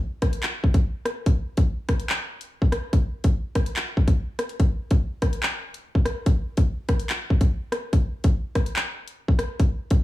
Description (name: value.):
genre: hip hop.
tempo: 144 BPM.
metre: 4/4.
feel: half-time.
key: none.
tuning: none.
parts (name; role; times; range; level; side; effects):
drill drum kit; drums; 0.2-10.0 s; handclaps, hi-hat, kick drum, rim click; -21 LUFS; equal; none.
room: digital ambience.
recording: small room ambience.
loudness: -21 LUFS.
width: side -16 dB against mid.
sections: 0.0-7.9 A section; 7.9-10.0 B section.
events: none.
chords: none.